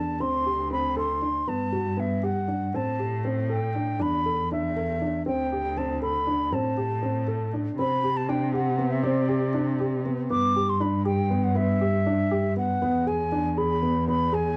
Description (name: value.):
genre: contemporary instrumental, chamber music in an uneven meter.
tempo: 238 BPM (eighths).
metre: 5/8.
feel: straight.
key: unclear.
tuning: A4 = 443 Hz.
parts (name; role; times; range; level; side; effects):
bright baroque flute; melody; 0.0-14.6 s; D5 to D6; -31 LUFS; equal; none.
dark grand piano; arpeggios; 0.0-14.5 s; B3 to A4; -30 LUFS; equal; none.
rich cello; bass; 0.0-14.6 s; D2 to C3; -30 LUFS; equal; none.
room: moderate studio reverb, RT60 0.8 s.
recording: worn, warbling old tape, cassette tape, warbly pitch drift.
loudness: -26 LUFS.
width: mono.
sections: 0.0-7.8 A section; 7.8-14.6 B section.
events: none.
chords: 0.2 D7sus4; 1.5 Gmaj7; 2.7 Am7; 4.0 E7sus4; 5.3 D7sus4; 6.5 Am7; 7.8 Csus2; 10.3 G6; 12.8 E.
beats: | 0.20 0.46 0.71 0.96 1.22 | 1.47 1.72 1.98 2.23 2.48 | 2.73 2.99 3.24 3.49 3.75 | 4.00 4.25 4.50 4.76 5.01 | 5.26 5.51 5.77 6.02 6.27 | 6.52 6.78 7.03 7.28 7.53 | 7.78 8.04 8.29 8.54 8.79 | 9.04 9.30 9.55 9.80 10.05 | 10.30 10.55 10.81 11.06 11.31 | 11.56 11.81 12.06 12.32 12.57 | 12.82 13.07 13.32 13.57 13.82 | 14.07 14.33.